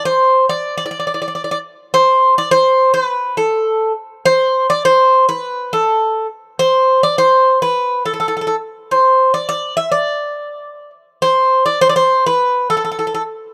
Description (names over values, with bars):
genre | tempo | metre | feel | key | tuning
greek folk | 103 BPM | 4/4 | straight | unclear | A4 = 441 Hz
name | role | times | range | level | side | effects
Greek bouzouki | solo | 0.0-13.2 s | A4 to E5 | -15 LUFS | equal | none
room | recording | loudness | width
little or no reverb | dry, close 1970s-style studio recording | -15 LUFS | mono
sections
0.0-1.9 A section; 1.9-13.5 B section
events
none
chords
none